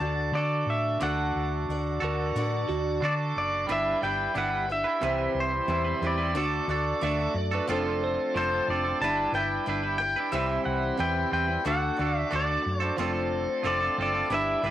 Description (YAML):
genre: rock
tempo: 90 BPM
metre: 4/4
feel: straight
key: G major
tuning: A4 = 443 Hz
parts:
  - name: pedal steel guitar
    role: melody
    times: 0.0-14.7 s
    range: C5 to A5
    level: -29 LUFS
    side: left 1 dB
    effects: tape echo
  - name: picked acoustic archtop guitar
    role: accompaniment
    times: 0.0-14.7 s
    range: C3 to D5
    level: -34 LUFS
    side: left 5 dB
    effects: cassette tape
  - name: tonewheel organ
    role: sustained chords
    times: 0.0-14.7 s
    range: C4 to A5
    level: -40 LUFS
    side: equal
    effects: overdrive, slow rotary speaker, cassette tape
  - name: twangy electric guitar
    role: riff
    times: 0.0-14.7 s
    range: C3 to B4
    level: -30 LUFS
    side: right 6 dB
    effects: cassette tape
  - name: hollow-body short-scale fingered electric bass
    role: bass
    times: 0.0-14.7 s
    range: F1 to D3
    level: -32 LUFS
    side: equal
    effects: none
  - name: electric slide guitar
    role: second line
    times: 2.0-8.4 s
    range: F#4 to E5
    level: -33 LUFS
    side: right 6 dB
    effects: cassette tape
room: moderate studio reverb, RT60 0.5 s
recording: home recording on cassette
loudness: -25 LUFS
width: side -12 dB against mid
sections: 0.0-3.7 A section; 3.7-14.7 B section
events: none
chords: 0.0 D; 3.7 G6; 5.0 Cmaj7; 6.4 D; 7.7 F6; 9.0 G6; 10.3 Cmaj7; 11.7 D; 13.0 F6